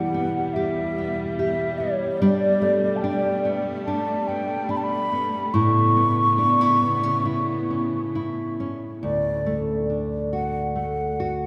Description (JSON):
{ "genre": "celtic folk, Celtic slow air", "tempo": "71 BPM", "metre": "4/4", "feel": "rubato", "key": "D major", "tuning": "A4 = 440 Hz", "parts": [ { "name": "mellow hollow wooden flute", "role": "melody", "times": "0.0-11.5 s", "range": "C#5 to C#6", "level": "-26 LUFS", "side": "equal", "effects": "none" }, { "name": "nylon-string guitar", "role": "accompaniment", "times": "0.0-11.5 s", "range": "D2 to G4", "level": "-26 LUFS", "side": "equal", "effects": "none" }, { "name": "rich symphonic string section", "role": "sustained chords", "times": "0.0-9.0 s", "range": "E2 to B3", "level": "-33 LUFS", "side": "equal", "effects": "none" } ], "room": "wet cathedral reverb, RT60 5.0 s", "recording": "recorded in a church or concert hall", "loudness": "-23 LUFS", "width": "mono", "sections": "0.0-9.0 A section; 9.0-11.5 B section", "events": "none", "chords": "0.0 Em; 2.2 Gadd9; 5.5 Aadd9; 9.0 D", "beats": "0.55 1.38 | 2.21 3.04 3.87 4.71 | 5.55 6.39 7.25 8.15 | 9.03 9.89 10.76" }